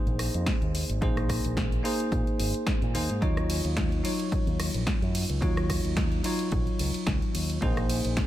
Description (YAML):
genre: nu-disco, nu disco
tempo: 109 BPM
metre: 4/4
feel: swing 54% on 16ths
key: Eb dorian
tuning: A4 = 439 Hz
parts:
  - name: bell-like tine electric piano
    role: accompaniment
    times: 0.0-8.3 s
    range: Gb3 to Db5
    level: -30 LUFS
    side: equal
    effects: lush chorus, diffuse ambient delay
  - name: fingered electric bass with an envelope filter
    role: bass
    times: 0.1-8.3 s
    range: Ab1 to Bb2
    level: -30 LUFS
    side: equal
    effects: none
  - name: house drum kit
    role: drums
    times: 0.1-8.3 s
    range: hi-hat, ride cymbal, rim click, snare drum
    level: -34 LUFS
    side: equal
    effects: studio ambience
  - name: electronic kick drum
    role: drums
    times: 0.5-8.3 s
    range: none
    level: -29 LUFS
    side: equal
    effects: studio ambience
room: light reverb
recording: none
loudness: -25 LUFS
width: side -13 dB against mid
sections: 0.0-8.3 A section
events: none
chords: 0.0 Bb9sus4; 3.2 Ebm9; 7.6 Bb9sus4